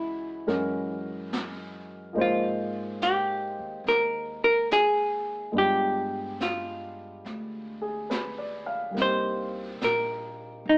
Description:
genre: jazz ballad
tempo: 71 BPM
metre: 4/4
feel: swing 68% on 8ths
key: unclear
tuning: A4 = 440 Hz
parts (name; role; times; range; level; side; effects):
- hollow-body jazz guitar; melody; 0.0-10.8 s; Eb4 to C5; -24 LUFS; equal; none
- warm baby grand piano; accompaniment; 0.0-10.8 s; Fb3 to F5; -32 LUFS; equal; none
- upright bass; bass; 0.0-10.8 s; G1 to Ab2; -41 LUFS; equal; none
- jazz brush drum kit; drums; 0.5-10.8 s; brushed snare drum, hi-hat, snare drum; -36 LUFS; equal; none
room: moderate studio reverb, RT60 0.7 s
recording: band playing live in one room, AM radio sound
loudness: -25 LUFS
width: side -28 dB against mid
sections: 0.0-10.8 A section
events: none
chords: 0.5 Gb9; 2.2 Abmaj7; 5.5 G7b9; 9.0 Cm7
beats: 0.48 1.32 | 2.17 3.01 3.86 4.70 | 5.54 6.39 7.24 8.10 | 8.95 9.80 10.65

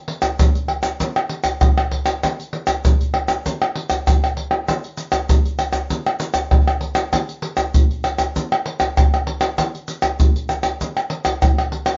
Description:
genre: samba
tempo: 98 BPM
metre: 4/4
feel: straight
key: none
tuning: none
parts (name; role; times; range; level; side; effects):
- pandeiro, tube shaker, surdo and tamborim; percussion; 0.1-12.0 s; none; -19 LUFS; equal; none
room: light reverb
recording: worn, warbling old tape, cassette tape, warbly pitch drift, nothing above 7.5 kHz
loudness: -20 LUFS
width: mono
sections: 0.0-12.0 A section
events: none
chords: none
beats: 0.39 1.00 1.61 | 2.23 2.84 3.45 4.07 | 4.68 5.29 5.91 6.52 | 7.13 7.75 8.36 8.97 | 9.59 10.20 10.81 11.43

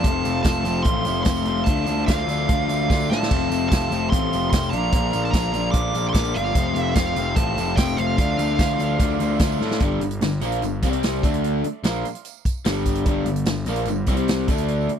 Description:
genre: classic rock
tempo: 148 BPM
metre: 4/4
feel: straight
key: G minor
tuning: A4 = 440 Hz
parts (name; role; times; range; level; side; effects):
- dark smooth lead guitar; melody; 0.0-9.4 s; F5 to D6; -27 LUFS; equal; overdrive
- overdriven electric guitar; riff; 0.0-14.9 s; F2 to F4; -26 LUFS; left 18 dB; none
- overdriven semi-hollow guitar; riff; 0.0-14.9 s; F2 to F4; -27 LUFS; right 17 dB; spring reverb
- fuzz picked electric bass; bass; 0.0-14.9 s; F1 to A2; -25 LUFS; equal; overdrive
- vintage drum kit; drums; 0.0-15.0 s; crash cymbal, hi-hat, kick drum, snare drum; -22 LUFS; equal; none
- tambourine; percussion; 0.3-14.9 s; none; -42 LUFS; right 25 dB; none
room: little or no reverb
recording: dry, close 1970s-style studio recording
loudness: -19 LUFS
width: side -8 dB against mid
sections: 0.0-9.8 A section; 9.8-15.0 B section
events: drum fill 2.9-3.3, 9.6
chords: 0.0 F; 1.7 Dm; 3.3 F; 4.7 Bb; 6.6 F; 8.2 Dm; 9.8 Gm; 10.8 C5; 11.2 D5; 11.6 Gm; 14.1 C5; 14.5 D5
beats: | 0.05 0.45 0.86 1.27 | 1.68 2.08 2.49 2.90 | 3.30 3.71 4.12 4.52 | 4.93 5.34 5.74 6.15 | 6.55 6.96 7.37 7.77 | 8.18 8.59 8.99 9.40 | 9.81 10.21 10.62 11.03 | 11.43 11.84 12.25 12.66 | 13.06 13.47 13.88 14.29 | 14.69

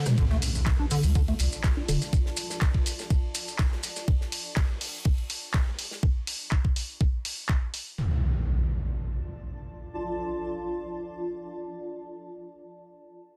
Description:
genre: acid house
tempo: 123 BPM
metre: 4/4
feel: straight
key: D minor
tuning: A4 = 440 Hz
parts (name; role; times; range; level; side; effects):
- acid bass, square; riff; 0.0-2.1 s; D3 to D4; -32 LUFS; equal; overdrive, subtle chorus, sidechain pumping, tape echo
- gated 80s drum kit; drums; 0.1-6.0 s; hi-hat, ride cymbal, snare drum; -45 LUFS; equal; high-pass filter on cymbals, high-pass filter on hats, high-pass filter on snare, high-pass filter on room
- punchy analog drum machine; drums; 0.1-7.8 s; handclaps, hi-hat, rim click, toms; -34 LUFS; equal; none
- maracas; percussion; 0.1-4.1 s; none; -39 LUFS; equal; none
- electronic kick drum; drums; 0.2-7.6 s; none; -27 LUFS; equal; none
- impact; sound effects; 0.2-2.1, 8.0-11.7 s; none; -32 LUFS; equal; none
- granular cloud pad; texture; 1.0-11.8 s; F4 to A5; -40 LUFS; equal; built-in reverb, sidechain pumping
- warm sub bass; bass; 0.3-2.0 s; D1 to D2; -28 LUFS; equal; sidechain pumping
room: light reverb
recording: dense, heavily limited modern master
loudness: -28 LUFS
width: mono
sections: 0.2-8.0 A section; 8.0-11.9 B section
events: drum fill 0.0; fade-out on ambient pad 0.2-6.0; impact 0.2-2.1; filter sweep on acid bass 0.2-2.1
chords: 0.2 Dm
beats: | 0.18 0.67 1.15 1.64 | 2.13 2.62 3.10 3.59 | 4.08 4.57 5.05 5.54 | 6.03 6.52 7.01 7.49 | 7.98 8.47 8.96 9.45 | 9.93 10.42 10.91 11.40

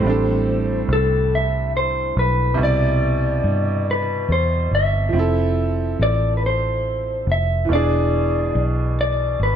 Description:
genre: slow six-eight R&B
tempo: 47 BPM (dotted quarters)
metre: 6/8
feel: straight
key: A minor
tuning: A4 = 440 Hz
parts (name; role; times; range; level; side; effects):
- mellow electric guitar; melody; 0.0-9.6 s; A4 to E5; -22 LUFS; left 2 dB; slapback echo
- warm baby grand piano; accompaniment; 0.0-9.6 s; A2 to D5; -23 LUFS; right 4 dB; none
- vintage muted fingered electric bass; bass; 0.0-9.6 s; E1 to G2; -21 LUFS; equal; none
room: small room ambience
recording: none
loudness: -17 LUFS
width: side -9 dB against mid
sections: 0.0-9.6 A section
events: none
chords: 0.0 Am11; 2.6 Cmaj9; 5.1 Fmaj7; 7.7 E7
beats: | 0.03 1.31 | 2.58 3.86 | 5.14 6.41 | 7.69 8.97

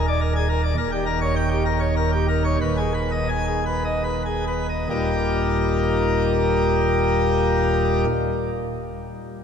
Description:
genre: classical, organ toccata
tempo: 68-108 BPM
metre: 3/4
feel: straight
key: Eb major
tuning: A4 = 441 Hz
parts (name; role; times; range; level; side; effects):
- pipe organ, plenum; solo; 0.0-8.0 s; Eb1 to Ab5; -19 LUFS; equal; none
room: wet cathedral reverb, RT60 4.9 s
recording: dark, warm production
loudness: -19 LUFS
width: side -7 dB against mid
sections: 0.0-4.9 A section; 4.9-9.4 B section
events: slowing down 0.0-4.9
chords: 0.0 Bb7/Eb; 0.8 Eb7; 2.6 Abm/Eb; 4.9 Eb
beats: 0.20 | 0.77 1.35 1.96 | 2.60 3.29 4.04 | 4.90 5.78 6.67 | 7.54

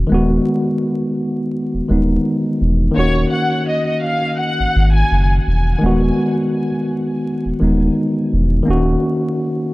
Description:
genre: hip hop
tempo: 84 BPM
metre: 4/4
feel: swing 55% on 16ths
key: unclear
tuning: A4 = 441 Hz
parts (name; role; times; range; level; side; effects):
- tine electric piano; accompaniment; 0.0-9.7 s; Eb3 to Gb4; -17 LUFS; equal; overdrive, fast stereo tremolo, cassette tape, high-pass filter, low-pass filter
- soft dub sub bass; bass; 0.0-9.0 s; Eb1 to Ab1; -16 LUFS; equal; none
- warm symphonic violin section; melody; 3.0-5.3 s; Db5 to Ab5; -21 LUFS; left 1 dB; high-pass filter, low-pass filter, tape echo
room: studio reverb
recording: dry, gritty hardware recording, vinyl crackle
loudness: -15 LUFS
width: side -20 dB against mid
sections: 0.0-9.7 A section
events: break 0.0-3.0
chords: 0.1 Abm7/Eb; 3.0 Ebm7; 5.8 Abm7/Eb; 8.7 Ebm7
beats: | 0.11 0.82 1.54 2.25 | 2.96 3.68 4.39 5.11 | 5.82 6.54 7.25 7.96 | 8.68 9.39

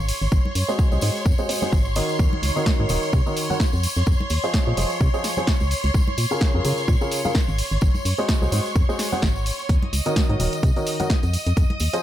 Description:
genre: piano house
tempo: 128 BPM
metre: 4/4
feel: swing 56% on 16ths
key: unclear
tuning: A4 = 440 Hz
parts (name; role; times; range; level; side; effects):
- string machine, violins; sustained chords; 0.0-12.0 s; Db5 to Eb6; -29 LUFS; right 1 dB; ensemble chorus, sidechain pumping
- organ-like FM bass; bass; 0.0-11.9 s; Eb1 to Db3; -22 LUFS; equal; sidechain pumping
- punchy analog drum machine; drums; 0.1-12.0 s; hi-hat, snare drum; -29 LUFS; right 1 dB; none
- tambourine and congas; percussion; 0.1-12.0 s; none; -32 LUFS; left 2 dB; none
- electronic kick drum; drums; 0.3-11.7 s; none; -20 LUFS; equal; none
- clear upright piano; riff; 0.7-12.0 s; Db3 to Ab5; -26 LUFS; equal; sidechain pumping, low-pass filter, ping-pong delay
room: little or no reverb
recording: none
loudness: -19 LUFS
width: side -12 dB against mid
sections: 0.0-12.0 A section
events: none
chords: 0.1 Ab7; 2.2 Ebm7; 3.8 Fm7; 5.7 Db6; 7.6 Ab7; 9.7 Ebm7; 11.3 Fm7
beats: | 0.32 0.79 1.26 1.73 | 2.19 2.66 3.13 3.60 | 4.07 4.54 5.01 5.48 | 5.94 6.41 6.88 7.35 | 7.82 8.29 8.76 9.23 | 9.69 10.16 10.63 11.10 | 11.57

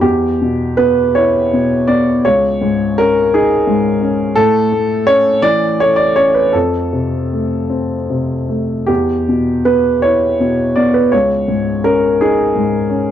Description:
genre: neoclassical minimalist piano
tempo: 50-58 BPM (dotted quarters)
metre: 6/8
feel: rubato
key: unclear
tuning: A4 = 440 Hz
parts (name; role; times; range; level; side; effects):
- dark upright piano; solo; 0.0-13.1 s; C#2 to D5; -12 LUFS; equal; none
room: little or no reverb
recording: dry, close 1970s-style studio recording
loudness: -12 LUFS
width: side -10 dB against mid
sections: 0.0-13.1 A section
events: none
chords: 0.0 Em; 2.2 C#sus2; 4.4 A; 6.5 F; 8.9 Em; 11.1 C#sus2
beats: | 0.03 1.15 | 2.24 3.32 | 4.35 5.41 | 6.53 7.71 | 8.89 10.03 | 11.12 12.20

